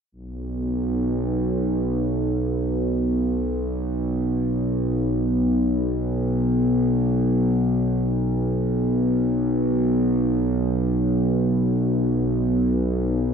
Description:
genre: world meditative, free-time meditation music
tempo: free time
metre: none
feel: none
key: unclear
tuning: A4 = 441 Hz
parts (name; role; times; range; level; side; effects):
- evolving wavetable pad; solo; 0.3-13.3 s; B1; -20 LUFS; equal; chorus, built-in reverb, ping-pong delay
room: moderate huge ambient reverb, RT60 8.1 s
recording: none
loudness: -20 LUFS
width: side -6 dB against mid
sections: 0.1-13.3 A section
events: none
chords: none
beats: free time

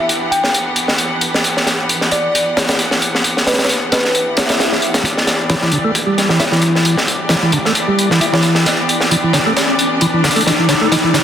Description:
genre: breakbeat, breaks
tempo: 133 BPM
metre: 4/4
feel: swing 54% on 16ths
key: E minor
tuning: A4 = 443 Hz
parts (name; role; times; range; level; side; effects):
- bell-like FM electric piano; melody; 0.0-4.4 s; B4 to G5; -20 LUFS; equal; chorus, AM radio sound, dub echo
- clear studio string section; sustained chords; 0.0-11.2 s; E3 to F#5; -20 LUFS; left 1 dB; vintage 12-bit sampler grit, sidechain pumping, low-pass filter
- crunchy breakbeat drum kit; drums; 0.1-11.2 s; hi-hat, kick drum, snare drum; -15 LUFS; equal; high-pass filter on kick, high-pass filter on hats, high-pass filter on snare, high-pass filter on room
- swell and riser; sound effects; 4.3-11.2 s; none; -22 LUFS; left 2 dB; none
- percussive tonewheel organ; riff; 5.5-11.2 s; D3 to E4; -15 LUFS; right 1 dB; slow rotary speaker, vintage 12-bit sampler grit, low-pass filter, dub echo
room: moderate plate reverb, RT60 1.5 s, studio reverb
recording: dense, heavily limited modern master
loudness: -12 LUFS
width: side -9 dB against mid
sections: 0.0-5.1 A section; 5.1-11.2 B section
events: swell 4.3-5.1; build-up 5.1-11.2; riser 5.1-11.2; drum fill 8.7-11.2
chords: 0.0 Em7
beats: 0.09 0.54 0.99 | 1.44 1.89 2.35 2.80 | 3.25 3.70 4.15 4.60 | 5.05 5.50 5.95 6.41 | 6.86 7.31 7.76 8.21 | 8.66 9.11 9.56 10.01 | 10.46 10.92

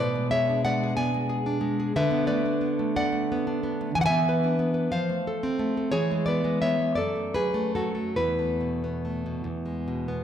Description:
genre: romantic piece for solo classical guitar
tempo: 46-63 BPM (dotted quarters)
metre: 6/8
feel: rubato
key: unclear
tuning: A4 = 440 Hz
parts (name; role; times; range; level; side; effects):
- nylon-string guitar; solo; 0.0-10.2 s; E2 to G#5; -24 LUFS; equal; none
room: wet recital hall reverb, RT60 1.6 s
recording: recorded in a church or concert hall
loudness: -24 LUFS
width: side -9 dB against mid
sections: 0.0-10.2 A section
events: none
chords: 0.0 G#dim/B; 2.0 D6; 3.9 E7; 4.9 F; 5.9 E; 7.0 F#madd9; 8.2 Esus4; 9.5 E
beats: | 0.02 0.99 | 1.96 2.95 | 3.94 4.91 | 5.93 6.99 | 8.19 9.47

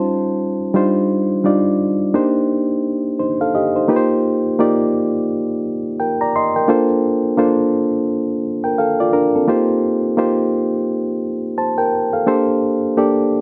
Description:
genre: R&B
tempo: 86 BPM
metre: 4/4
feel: swing 61% on 16ths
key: unclear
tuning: A4 = 440 Hz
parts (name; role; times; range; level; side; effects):
- reed electric piano; solo; 0.0-13.4 s; G3 to C6; -18 LUFS; equal; none
room: moderate studio reverb, RT60 0.7 s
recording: dark, warm production, nothing above 11.0 kHz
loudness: -18 LUFS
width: mono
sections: 0.0-3.9 A section; 3.9-13.4 B section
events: none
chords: 0.0 Dbmaj9#11; 0.7 Ebmaj13; 2.1 Cm9; 3.9 Eb69; 6.7 Bbmaj9; 9.5 Eb69; 12.3 Bbmaj13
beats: 0.39 | 1.09 1.79 2.48 3.18 | 3.88 4.58 5.28 5.97 | 6.67 7.37 8.07 8.76 | 9.46 10.16 10.86 11.55 | 12.25 12.95

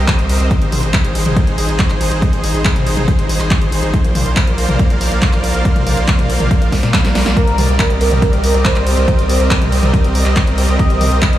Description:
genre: uplifting trance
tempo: 140 BPM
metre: 4/4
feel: straight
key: C minor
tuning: A4 = 440 Hz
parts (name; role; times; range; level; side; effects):
- supersaw pad; sustained chords; 0.0-11.4 s; Bb3 to F5; -20 LUFS; right 1 dB; sidechain pumping
- gritty driven synth bass; bass; 0.0-11.4 s; Ab1 to Bb2; -16 LUFS; equal; sidechain pumping
- electronic kick drum; drums; 0.1-11.3 s; none; -14 LUFS; equal; overdrive
- punchy analog drum machine; drums; 0.1-11.4 s; handclaps, hi-hat, snare drum, toms; -20 LUFS; left 1 dB; overdrive
- warm velvety synth lead; second line; 7.4-11.4 s; Bb4 to Eb5; -20 LUFS; right 2 dB; chorus, cassette tape, tape echo
room: light reverb, digital ambience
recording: studio reverb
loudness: -12 LUFS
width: side -13 dB against mid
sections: 0.0-11.4 A section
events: drum fill 6.7-7.4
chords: 0.0 Cm7; 0.5 Ab; 3.9 Bbadd9; 7.4 Cm7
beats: 0.08 | 0.51 0.94 1.37 1.79 | 2.22 2.65 3.08 3.51 | 3.94 4.37 4.79 5.22 | 5.65 6.08 6.51 6.94 | 7.37 7.79 8.22 8.65 | 9.08 9.51 9.94 10.37 | 10.79 11.22

